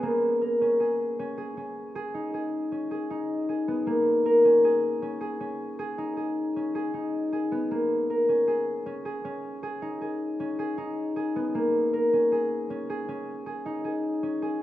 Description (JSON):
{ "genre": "contemporary instrumental, contemporary", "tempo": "156 BPM", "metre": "5/4", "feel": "straight", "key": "unclear", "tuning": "A4 = 443 Hz", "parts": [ { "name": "concert harp", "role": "solo", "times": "0.0-14.6 s", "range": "Bb3 to Bb4", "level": "-25 LUFS", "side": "left 1 dB", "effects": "none" } ], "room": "light reverb", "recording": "none", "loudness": "-25 LUFS", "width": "side -14 dB against mid", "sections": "0.0-14.6 A section", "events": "none", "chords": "0.0 Bbm7; 1.9 Dbsus2; 3.9 Bbm7; 5.8 Dbsus2; 7.7 Bbm7; 9.6 Dbsus2; 11.5 Bbm7" }